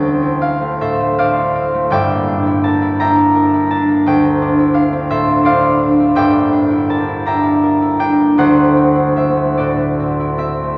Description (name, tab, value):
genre	classical, solo harp piece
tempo	56 BPM (dotted quarters)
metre	6/8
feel	uneven beats, rubato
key	unclear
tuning	A4 = 440 Hz
part	concert harp	solo	0.0-10.8 s	G1 to Bb5	-14 LUFS	equal	none
room	wet cathedral reverb, RT60 5.7 s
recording	none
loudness	-14 LUFS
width	mono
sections	0.0-10.8 A section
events	none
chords	0.0 Dm9; 1.9 Gm6; 4.1 Dm9; 6.2 Gm6; 8.4 D9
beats	0.79 | 1.90 2.97 | 4.06 5.11 | 6.17 7.25 | 8.37 9.57